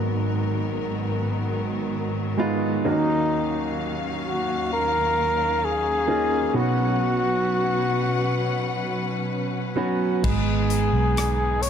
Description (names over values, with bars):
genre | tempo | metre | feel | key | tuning
pop ballad | 65 BPM | 4/4 | straight | unclear | A4 = 440 Hz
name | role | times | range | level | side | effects
mellow flugelhorn | melody | 0.0-11.7 s | D#4 to C#5 | -25 LUFS | left 1 dB | none
warm baby grand piano | accompaniment | 0.0-11.7 s | G#1 to G#4 | -26 LUFS | right 2 dB | none
warm studio string section | sustained chords | 0.0-11.7 s | D#2 to F#5 | -28 LUFS | left 2 dB | none
vintage muted fingered electric bass | bass | 10.2-11.7 s | G#1 to B1 | -23 LUFS | left 1 dB | none
modern studio drum kit | drums | 10.2-11.7 s | crash cymbal, hi-hat, kick drum, rim click | -28 LUFS | left 2 dB | none
room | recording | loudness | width
moderate concert hall reverb, RT60 2.1 s | dark, warm production | -21 LUFS | side -8 dB against mid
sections
0.0-10.2 A section; 10.2-11.7 B section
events
none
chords
0.0 G#m7; 2.9 D#m7; 6.6 Bsus2; 10.2 G#m